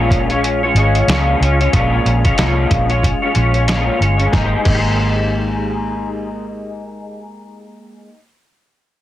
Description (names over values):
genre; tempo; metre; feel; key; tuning
indie pop, bedroom pop; 92 BPM; 4/4; swing 60% on 16ths; Ab major; A4 = 440 Hz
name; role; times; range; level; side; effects
electric guitar through a small old amp; accompaniment; 0.0-8.3 s; Bb2 to Db5; -18 LUFS; left 1 dB; ensemble chorus, warbly pitch drift
vintage muted fingered electric bass; bass; 0.0-7.7 s; G1 to Db2; -17 LUFS; equal; none
lo-fi sampler-style drum kit; drums; 0.1-4.9 s; crash cymbal, hi-hat, kick drum, snare drum; -19 LUFS; equal; none
room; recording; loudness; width
moderate small room ambience, RT60 0.5 s; heavily compressed radio sound, multiband compression; -13 LUFS; side -13 dB against mid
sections
0.0-4.3 A section; 4.3-6.9 B section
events
none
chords
0.0 Bbm7; 4.3 Abmaj9